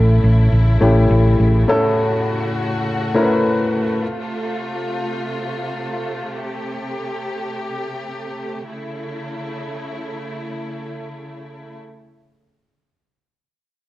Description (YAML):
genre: piano-driven pop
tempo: free time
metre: none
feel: none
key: A mixolydian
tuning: A4 = 445 Hz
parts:
  - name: warm baby grand piano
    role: accompaniment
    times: 0.0-4.0 s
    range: A2 to B4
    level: -17 LUFS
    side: left 1 dB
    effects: none
  - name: rich studio string section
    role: sustained chords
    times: 0.0-11.8 s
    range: C3 to G4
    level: -26 LUFS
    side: equal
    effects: none
  - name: hollow-body short-scale fingered electric bass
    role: bass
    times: 0.0-1.6 s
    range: A1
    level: -13 LUFS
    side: equal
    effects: none
room: moderate large studio reverb, RT60 1.1 s, small room ambience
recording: worn, warbling old tape, cassette tape, warbly pitch drift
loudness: -17 LUFS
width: side -17 dB against mid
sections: 0.0-8.7 A section; 8.7-11.0 B section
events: none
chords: 0.0 A; 4.0 F; 8.7 A